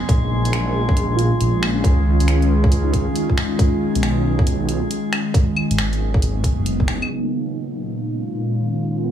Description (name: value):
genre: future garage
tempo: 137 BPM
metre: 4/4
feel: swing 65% on 16ths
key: Bb phrygian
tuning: A4 = 440 Hz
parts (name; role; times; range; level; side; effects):
- ethereal airy pad; sustained chords; 0.0-9.1 s; Bb2 to F4; -22 LUFS; equal; ensemble chorus, built-in reverb, sidechain pumping
- drifting glass-harmonics texture; texture; 0.0-7.1 s; Ab3 to Ab4; -30 LUFS; left 1 dB; chorus, built-in reverb
- swelling detuned saw bass; bass; 0.1-7.0 s; Gb1 to Db2; -19 LUFS; equal; sidechain pumping
- electronic kick drum; drums; 0.1-6.9 s; none; -16 LUFS; equal; none
- garage drum kit; drums; 0.1-9.0 s; claves, finger snaps, hi-hat; -26 LUFS; left 1 dB; none
- muted felt-like synth keys; accompaniment; 1.2-3.8, 7.2-9.1 s; Bb3 to F4; -29 LUFS; right 5 dB; chorus, sidechain pumping, low-pass filter, digital delay
room: moderate recital hall reverb, RT60 1.8 s, digital ambience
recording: low-pass filter, small room ambience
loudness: -17 LUFS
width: side -10 dB against mid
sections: 0.0-7.1 A section; 7.1-9.1 B section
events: filter sweep on synth keys 7.1-9.1; filter sweep 7.1-9.1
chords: 0.1 Bbm; 1.8 Db; 3.6 B6; 5.3 Abm; 7.1 Bbm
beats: | 0.09 0.53 0.96 1.40 | 1.84 2.28 2.72 3.15 | 3.59 4.03 4.47 4.91 | 5.34 5.78 6.22 6.66 | 7.10 7.53 7.97 8.41 | 8.85